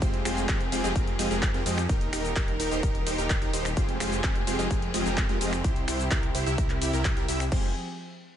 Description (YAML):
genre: EDM, festival progressive house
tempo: 128 BPM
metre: 4/4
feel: straight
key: F minor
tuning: A4 = 440 Hz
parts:
  - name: rich studio string section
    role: sustained chords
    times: 0.0-7.7 s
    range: C3 to Bb4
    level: -34 LUFS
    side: left 1 dB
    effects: sidechain pumping
  - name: supersaw stab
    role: riff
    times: 0.0-7.7 s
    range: Ab3 to E5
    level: -30 LUFS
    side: right 1 dB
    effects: vintage 12-bit sampler grit, sidechain pumping, digital delay
  - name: wide detuned saw bass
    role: bass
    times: 0.0-7.7 s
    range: Eb1 to F2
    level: -32 LUFS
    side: equal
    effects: chorus, tube saturation, sidechain pumping
  - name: big-room dance drum kit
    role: drums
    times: 0.0-7.6 s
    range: cabasa, crash cymbal, finger snaps, handclaps, hi-hat, ride cymbal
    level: -33 LUFS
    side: left 1 dB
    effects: none
  - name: electronic kick drum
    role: drums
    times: 0.0-7.6 s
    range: none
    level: -27 LUFS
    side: equal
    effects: none
room: digital ambience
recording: nothing above 10.9 kHz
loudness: -24 LUFS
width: side -10 dB against mid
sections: 0.0-7.5 A section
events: drop 0.0-7.5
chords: 0.0 Fmadd9; 1.9 Eb; 3.8 Fmadd9; 5.6 C; 7.5 Fmadd9